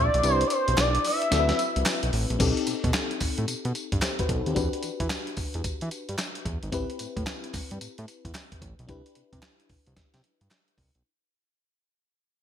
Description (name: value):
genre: R&B, new jack swing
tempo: 111 BPM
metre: 4/4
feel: swing 64% on 16ths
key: unclear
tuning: A4 = 441 Hz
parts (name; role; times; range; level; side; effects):
- octave-doubled lead; melody; 0.0-2.1 s; C5 to E5; -25 LUFS; equal; chorus, ping-pong delay
- FM electric piano with tremolo; accompaniment; 0.0-11.1 s; C4 to C5; -32 LUFS; left 5 dB; none
- fat analog bass; bass; 0.0-11.0 s; G#1 to E3; -28 LUFS; equal; none
- dusty soul sampler-style drum kit; drums; 0.1-11.0 s; crash cymbal, handclaps, hi-hat, kick drum, snare drum, tambourine; -29 LUFS; equal; gated reverb
- group handclap; percussion; 0.8-10.7 s; none; -41 LUFS; right 4 dB; none
room: moderate plate reverb, RT60 1.4 s, digital ambience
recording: bright 1980s-style digital production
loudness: -24 LUFS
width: side -9 dB against mid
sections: 0.0-2.4 A section; 2.4-11.0 B section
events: kick muted 0.2-2.4; fade-out 2.4-11.0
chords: 0.2 Cmaj9; 1.3 D13; 2.4 B7b9b13; 4.6 Em7; 6.7 Am9; 8.9 Cmaj9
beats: | 0.24 0.78 1.32 1.86 | 2.40 2.94 3.48 4.02 | 4.56 5.10 5.64 6.18 | 6.72 7.26 7.80 8.35 | 8.89 9.43 9.97 10.51